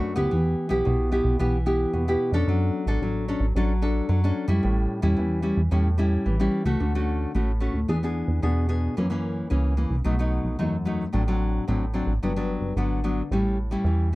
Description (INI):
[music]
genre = samba and choro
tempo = 111 BPM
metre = 4/4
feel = straight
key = D major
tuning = A4 = 440 Hz
[part]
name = nylon-string guitar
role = accompaniment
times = 0.0-14.2 s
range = F#2 to A4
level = -25 LUFS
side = left 1 dB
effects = none
[part]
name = plucky analog bass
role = bass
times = 0.2-14.2 s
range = G1 to F#2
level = -24 LUFS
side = right 1 dB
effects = none
[sound]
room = light reverb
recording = dry, close 1970s-style studio recording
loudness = -22 LUFS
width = side -19 dB against mid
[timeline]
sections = 0.0-6.8 A section; 6.8-14.2 B section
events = none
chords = 0.3 Em; 2.5 Dmaj7; 4.6 A7; 6.8 Dmaj7; 7.9 E7; 9.0 F#7; 10.1 B7; 11.1 D7/A; 12.2 Gmaj7; 13.3 A7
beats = | 0.33 0.86 1.40 1.94 | 2.48 3.02 3.56 4.10 | 4.64 5.18 5.72 6.26 | 6.80 7.34 7.88 8.43 | 8.97 9.51 10.05 10.59 | 11.13 11.68 12.22 12.76 | 13.30 13.85